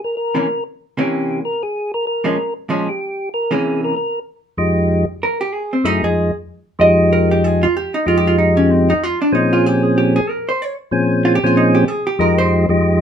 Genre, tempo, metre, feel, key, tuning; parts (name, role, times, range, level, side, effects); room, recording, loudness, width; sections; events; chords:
jazz; 190 BPM; 4/4; swing 62% on 8ths; F minor; A4 = 440 Hz
percussive tonewheel organ; melody; 0.0-13.0 s; F2 to Bb4; -15 LUFS; equal; slow rotary speaker
vintage hollow-body jazz guitar; accompaniment; 0.3-12.7 s; Bb2 to Eb5; -17 LUFS; right 1 dB
moderate club reverb, RT60 0.6 s; minimal, uncompressed stereo recording; -14 LUFS; side -8 dB against mid
0.0-4.3 A section; 4.3-13.0 A section
tonewheel organ solo 0.0-4.3; hollow-body jazz guitar solo 4.3-13.0
0.5 C7b9; 1.7 Bbm7; 3.0 C7b9; 4.3 Fm7; 9.3 Bbm7; 11.9 Fm7